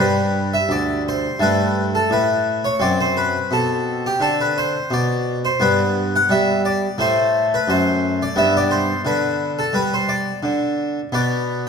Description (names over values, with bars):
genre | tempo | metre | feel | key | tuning
classical, baroque-style suite movement for harpsichord | 86 BPM | 4/4 | rubato | G major | A4 = 439 Hz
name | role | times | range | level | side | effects
harpsichord | solo | 0.0-11.7 s | D2 to F#5 | -17 LUFS | equal | none
room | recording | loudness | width
wet recital hall reverb, RT60 1.6 s | minimal, uncompressed stereo recording | -17 LUFS | side -6 dB against mid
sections
0.0-11.7 A section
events
none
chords
0.0 G5; 1.4 Gadd9; 2.8 D7/F#; 5.6 G; 7.0 F#dim; 8.4 G; 11.1 G/B (rootless)